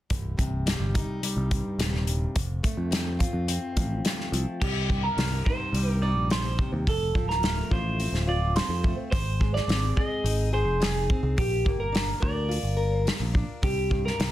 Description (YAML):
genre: quiet-loud alternative rock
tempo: 106 BPM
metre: 4/4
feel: straight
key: C minor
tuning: A4 = 440 Hz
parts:
  - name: fingerpicked plugged-in steel-string acoustic guitar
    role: arpeggios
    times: 0.1-14.3 s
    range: C2 to Bb4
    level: -32 LUFS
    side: left 2 dB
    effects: none
  - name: picked electric bass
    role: bass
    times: 0.1-14.3 s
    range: C1 to F2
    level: -28 LUFS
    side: equal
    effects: none
  - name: loose indie drum kit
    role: drums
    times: 0.1-14.3 s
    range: crash cymbal, hi-hat, kick drum, snare drum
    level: -28 LUFS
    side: equal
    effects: none
  - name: electric guitar through a small old amp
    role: melody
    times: 4.6-14.3 s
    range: G4 to Eb5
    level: -30 LUFS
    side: right 3 dB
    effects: phaser, slapback echo
room: light reverb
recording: dense, heavily limited modern master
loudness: -24 LUFS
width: side -14 dB against mid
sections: 0.1-4.6 A section; 4.6-14.3 B section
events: none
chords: 0.1 Cm; 2.4 F; 4.6 Cm; 6.9 F; 9.1 Ab; 11.4 Bb; 13.6 C5